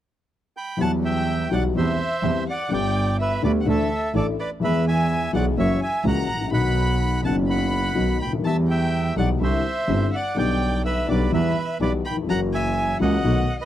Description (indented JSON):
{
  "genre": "tango",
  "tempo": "126 BPM",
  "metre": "4/4",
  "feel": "rubato",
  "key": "E minor",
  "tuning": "A4 = 440 Hz",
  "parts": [
    { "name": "bandoneon", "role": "melody", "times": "0.6-13.7 s", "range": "A4 to B5", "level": "-27 LUFS", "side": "right 2 dB", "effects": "none" },
    { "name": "rich violin", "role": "second line", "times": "0.8-13.7 s", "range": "D5 to B5", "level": "-30 LUFS", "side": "left 2 dB", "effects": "none" },
    { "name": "dark upright piano", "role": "accompaniment", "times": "0.8-13.4 s", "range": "F#1 to A4", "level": "-24 LUFS", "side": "left 5 dB", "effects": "none" },
    { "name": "clear double bass", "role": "bass", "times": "0.8-13.4 s", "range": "F#1 to E2", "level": "-24 LUFS", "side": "right 3 dB", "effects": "none" }
  ],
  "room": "small room ambience",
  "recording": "dry, close 1970s-style studio recording",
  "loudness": "-20 LUFS",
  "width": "side -12 dB against mid",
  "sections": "0.8-13.7 A section",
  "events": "none",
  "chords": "0.0 N.C.; 0.8 Emadd9; 1.8 C/E; 2.7 G; 3.7 Dsus2; 4.6 E; 5.6 F#7; 6.5 B; 8.4 Em; 9.4 Cadd9; 10.4 G/B; 11.3 Em; 12.3 F#7",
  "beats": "0.31 | 0.79 1.27 1.75 2.23 | 2.71 3.19 3.66 4.14 | 4.62 5.09 5.57 6.05 | 6.52 7.00 7.48 7.96 | 8.45 8.93 9.41 9.89 | 10.37 10.85 11.32 11.80 | 12.28 12.75 13.23"
}